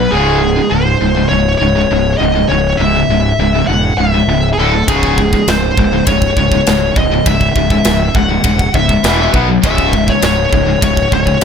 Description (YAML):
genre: heavy metal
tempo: 101 BPM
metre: 4/4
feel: straight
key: C# minor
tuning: A4 = 439 Hz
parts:
  - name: high-gain lead guitar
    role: melody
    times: 0.0-11.4 s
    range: G#4 to F#5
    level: -15 LUFS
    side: left 1 dB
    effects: distortion
  - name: tight distorted guitar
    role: riff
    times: 0.0-11.4 s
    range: C#2 to B3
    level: -17 LUFS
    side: left 16 dB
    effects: distortion
  - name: tight distorted guitar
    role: riff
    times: 0.0-11.4 s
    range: C#2 to B3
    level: -18 LUFS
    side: right 10 dB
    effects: distortion
  - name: fuzz fingered electric bass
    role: bass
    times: 0.0-11.4 s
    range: C#1 to B1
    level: -16 LUFS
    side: equal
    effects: overdrive
  - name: tight metal drum kit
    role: drums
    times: 4.9-11.4 s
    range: kick drum, ride cymbal, snare drum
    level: -16 LUFS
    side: equal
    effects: none
room: little or no reverb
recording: none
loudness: -10 LUFS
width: side -7 dB against mid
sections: 0.0-11.4 A section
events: none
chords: 0.1 C#m; 4.6 D5; 4.9 C#m; 9.0 E5; 9.3 B5; 9.6 C#m